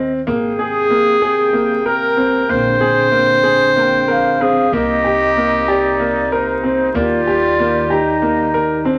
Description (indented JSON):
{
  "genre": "contemporary instrumental, chamber music in an uneven meter",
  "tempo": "189 BPM (eighths)",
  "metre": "7/8",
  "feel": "straight",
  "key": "Bb mixolydian",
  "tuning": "A4 = 441 Hz",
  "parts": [
    { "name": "wooden flute", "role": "melody", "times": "0.0-0.1, 3.8-8.9 s", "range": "C5 to Bb5", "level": "-22 LUFS", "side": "equal", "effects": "none" },
    { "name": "clear grand piano", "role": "arpeggios", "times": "0.0-9.0 s", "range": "Bb3 to Bb4", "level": "-21 LUFS", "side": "equal", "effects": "none" },
    { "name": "upright bass", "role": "bass", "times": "0.0-9.0 s", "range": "Ab1 to Eb2", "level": "-32 LUFS", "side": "equal", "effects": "none" },
    { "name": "clear clarinet", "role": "second line", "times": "0.3-9.0 s", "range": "D4 to C5", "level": "-18 LUFS", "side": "equal", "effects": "none" },
    { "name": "bright brass ensemble", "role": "sustained chords", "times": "0.3-9.0 s", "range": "C3 to G5", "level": "-26 LUFS", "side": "equal", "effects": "none" }
  ],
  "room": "wet studio reverb, RT60 0.5 s",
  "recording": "vinyl crackle",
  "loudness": "-15 LUFS",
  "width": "mono",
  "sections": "0.0-9.0 A section",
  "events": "none",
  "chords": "0.3 Abmaj9; 2.5 Bb13; 4.7 Cm7; 7.0 Ebmaj7"
}